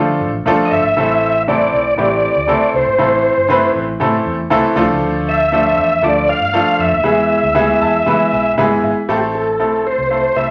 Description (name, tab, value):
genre	uptempo 1960s-style soul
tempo	118 BPM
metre	4/4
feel	straight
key	A minor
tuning	A4 = 440 Hz
part	bright grand piano	accompaniment	0.0-10.5 s	E3 to A5	-18 LUFS	equal	none
part	vintage muted fingered electric bass	bass	0.0-10.5 s	E1 to E3	-28 LUFS	equal	none
part	tonewheel organ	melody	0.7-10.5 s	G4 to F5	-17 LUFS	equal	chorus vibrato, stopped rotary speaker
room	wet large studio reverb, RT60 0.8 s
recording	none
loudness	-15 LUFS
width	mono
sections	0.0-9.1 A section; 9.1-10.5 B section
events	grand piano fill 7.6-9.1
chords	0.0 Dm; 1.0 Am; 4.8 Dm; 7.0 E; 9.1 Am